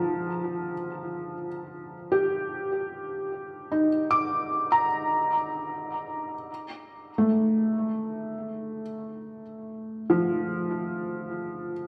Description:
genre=ambient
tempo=free time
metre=none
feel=none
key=unclear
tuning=A4 = 440 Hz
part: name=felt-muted upright piano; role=solo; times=0.0-11.9 s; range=F3 to D6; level=-29 LUFS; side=equal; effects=tape echo
room=wet scoring stage reverb, RT60 2.1 s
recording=none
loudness=-28 LUFS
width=mono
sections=0.0-11.9 A section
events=none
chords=0.0 Ebmaj9; 6.5 Dm (rootless)

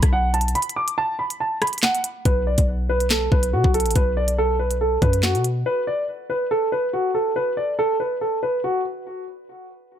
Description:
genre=hip hop, drill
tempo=141 BPM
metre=4/4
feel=half-time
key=B minor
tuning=A4 = 440 Hz
part: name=dark concert grand piano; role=melody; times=0.0-8.8 s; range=F#4 to D6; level=-22 LUFS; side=equal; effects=low-pass filter, digital delay
part: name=hard-hitting 808-style bass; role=bass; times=0.0-5.6 s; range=A1 to B2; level=-22 LUFS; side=equal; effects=none
part: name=drill drum kit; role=drums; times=0.0-5.5 s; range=handclaps, hi-hat, kick drum, rim click, snare drum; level=-21 LUFS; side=equal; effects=none
room=light reverb, digital ambience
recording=none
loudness=-19 LUFS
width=side -10 dB against mid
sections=0.0-2.3 A section; 2.3-9.1 B section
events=break 0.6-2.3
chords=0.0 N.C.; 2.3 B5; 5.7 N.C.

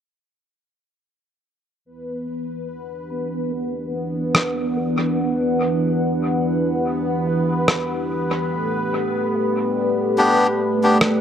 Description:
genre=ambient dub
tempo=72 BPM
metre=4/4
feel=swing 57% on 16ths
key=E minor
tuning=A4 = 440 Hz
part: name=warm analog pad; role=sustained chords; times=1.8-11.2 s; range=E3 to F#5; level=-22 LUFS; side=right 1 dB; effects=chorus
part: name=bubbling stepped-filter texture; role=texture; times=1.9-11.2 s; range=B3 to B4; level=-23 LUFS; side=left 1 dB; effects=chorus, built-in reverb
part: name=electronic rim click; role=drums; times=4.3-11.2 s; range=none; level=-21 LUFS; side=equal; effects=dub echo
part: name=melodica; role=stabs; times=10.2-11.0 s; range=B3 to G4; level=-17 LUFS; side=left 2 dB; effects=none
room=moderate spring reverb, RT60 2.0 s, digital ambience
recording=echo-heavy mix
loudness=-18 LUFS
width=side -9 dB against mid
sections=1.9-11.2 A section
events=fade-in on analog synth pad 1.9-11.2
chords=1.9 Em9; 8.5 A9sus4

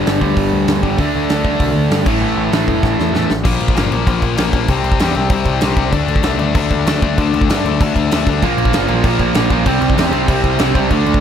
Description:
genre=punk rock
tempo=194 BPM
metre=4/4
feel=straight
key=unclear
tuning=A4 = 440 Hz
part: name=distorted electric guitar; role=riff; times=0.0-3.3, 8.4-11.2 s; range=G2 to D4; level=-18 LUFS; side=right 16 dB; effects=distortion
part: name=overdriven electric guitar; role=riff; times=0.0-11.2 s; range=G2 to D4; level=-17 LUFS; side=left 7 dB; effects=none
part: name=growling picked electric bass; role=bass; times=0.0-11.2 s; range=E1 to G2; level=-20 LUFS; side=equal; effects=overdrive
part: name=big rock drum kit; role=drums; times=0.1-11.2 s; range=crash cymbal, hi-hat, kick drum, snare drum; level=-18 LUFS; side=equal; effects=none
room=little or no reverb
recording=none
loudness=-13 LUFS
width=side -8 dB against mid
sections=0.0-3.5 A section; 3.5-11.2 B section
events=drum fill 2.8-3.5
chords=0.0 G5; 1.0 D5; 2.1 A5; 3.5 Bb5; 4.7 C5; 5.9 D5; 8.4 Bb5; 9.7 C5

